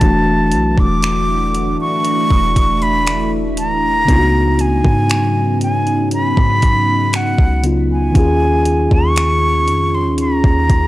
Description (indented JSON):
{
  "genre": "contemporary R&B",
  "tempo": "59 BPM",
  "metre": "4/4",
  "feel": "straight",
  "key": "unclear",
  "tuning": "A4 = 439 Hz",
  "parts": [
    { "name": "breathy silver concert flute", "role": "melody", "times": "0.0-10.9 s", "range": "Gb5 to D6", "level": "-18 LUFS", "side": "equal", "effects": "none" },
    { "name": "mellow tine electric piano", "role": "accompaniment", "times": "0.0-10.9 s", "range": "Db3 to Ab4", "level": "-18 LUFS", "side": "left 1 dB", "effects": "none" },
    { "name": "deep dark ambient pad", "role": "sustained chords", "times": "0.0-10.9 s", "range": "Db3 to Ab4", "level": "-22 LUFS", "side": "right 1 dB", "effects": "chorus, built-in reverb" },
    { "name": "warm 808-style bass", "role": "bass", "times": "0.0-10.9 s", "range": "D1 to Ab2", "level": "-18 LUFS", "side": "equal", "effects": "none" },
    { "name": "crisp 8-bit digital drum machine", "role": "drums", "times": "0.0-10.9 s", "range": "finger snaps, hi-hat, kick drum", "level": "-15 LUFS", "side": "equal", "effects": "overdrive" }
  ],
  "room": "little or no reverb",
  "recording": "dry, gritty hardware recording, transformer saturation",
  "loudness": "-12 LUFS",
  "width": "side -16 dB against mid",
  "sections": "0.0-10.9 A section",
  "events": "none",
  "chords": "0.0 E9sus4; 4.1 Db9sus4; 8.2 Eb9sus4",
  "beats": "| 0.02 1.03 2.05 3.07 | 4.08 5.10 6.12 7.14 | 8.15 9.17 10.19"
}